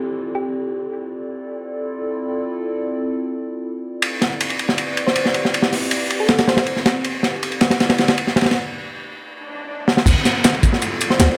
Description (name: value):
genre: drum and bass, jungle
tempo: 159 BPM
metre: 4/4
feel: straight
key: D dorian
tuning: A4 = 440 Hz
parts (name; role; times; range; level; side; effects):
- thumb-piano-like synth pluck; melody; 0.0-0.9, 5.1-6.6, 11.1-11.3 s; G4 to C5; -29 LUFS; equal; chorus, dub echo
- warbly tape-like pad; sustained chords; 0.0-11.4 s; C4 to D5; -28 LUFS; equal; chorus, built-in reverb, phaser, vintage 12-bit sampler grit
- downlifter and swell; sound effects; 0.0-1.0, 9.4-11.4 s; none; -31 LUFS; equal; none
- crunchy breakbeat drum kit; drums; 4.0-11.4 s; crash cymbal, hi-hat, kick drum, ride cymbal, snare drum; -19 LUFS; equal; none
- warm 808-style bass; bass; 10.1-11.3 s; D2; -18 LUFS; equal; tube saturation
- electronic tambourine and snare drum; drums; 10.1-11.3 s; none; -28 LUFS; equal; overdrive, high-pass filter on snare, high-pass filter on perc, high-pass filter on hats, high-pass filter on room
room: light reverb, small room ambience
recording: none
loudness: -20 LUFS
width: mono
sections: 0.0-10.1 A section; 10.1-11.4 B section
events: filter sweep on ambient pad 0.0-10.1; break 8.6-10.1; swell 9.4-10.1; drum fill 9.9; drop 10.1-11.4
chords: 0.0 Dm7; 4.0 Cmaj7; 10.1 Dm7